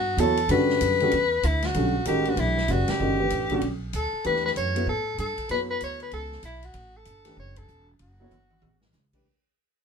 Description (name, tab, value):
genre	modal jazz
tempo	192 BPM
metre	4/4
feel	swing 63% on 8ths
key	unclear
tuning	A4 = 439 Hz
part	warm soprano saxophone	melody	0.0-8.9 s	E4 to C#5	-26 LUFS	left 2 dB	none
part	upright bass	bass	0.0-9.2 s	E1 to A2	-29 LUFS	right 1 dB	none
part	warm baby grand piano	accompaniment	0.2-9.2 s	C#3 to D5	-26 LUFS	right 1 dB	none
part	swinging big-band drum kit	drums	0.2-9.2 s	crash cymbal, hi-hat, kick drum, ride cymbal, snare drum, toms	-38 LUFS	left 2 dB	none
room	moderate studio reverb, RT60 0.6 s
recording	minimal, uncompressed stereo recording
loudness	-22 LUFS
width	side -6 dB against mid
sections	0.0-9.2 A section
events	fade-out 0.0-9.2; band accent 2.8, 7.5; drum fill 8.3-8.9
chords	0.0 Em9; 4.2 F#m